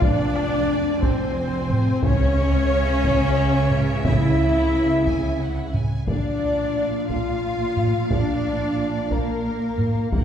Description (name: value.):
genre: cinematic, epic orchestral film score.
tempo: 59 BPM (dotted quarters).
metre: 6/8.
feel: straight.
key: unclear.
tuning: A4 = 438 Hz.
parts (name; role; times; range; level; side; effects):
rich symphonic violin section; melody; 0.0-10.2 s; Fb5 to Ab5; -38 LUFS; left 3 dB; none.
flute section; second line; 0.0-10.2 s; Bb4 to F5; -30 LUFS; right 2 dB; none.
warm symphonic violin section; second line; 0.0-10.2 s; Bb4 to F5; -33 LUFS; left 2 dB; none.
clear symphonic viola section; accompaniment; 0.0-10.2 s; Bb3 to F4; -32 LUFS; right 1 dB; none.
mellow French horn section; sustained chords; 0.0-10.2 s; Bb3 to F4; -24 LUFS; left 2 dB; none.
rich studio double bass section; bass; 0.0-10.2 s; F1 to Db2; -26 LUFS; right 2 dB; none.
warm symphonic cello section; bass; 0.0-10.2 s; F2 to Db3; -28 LUFS; right 2 dB; none.
taiko ensemble; drums; 0.0-10.2 s; none; -25 LUFS; equal; none.
room: wet scoring stage reverb, RT60 2.0 s.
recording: heard from further back in the room.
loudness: -19 LUFS.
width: side -9 dB against mid.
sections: 0.0-10.2 A section.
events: none.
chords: 0.0 Fm; 2.0 Dbm; 6.1 Bb.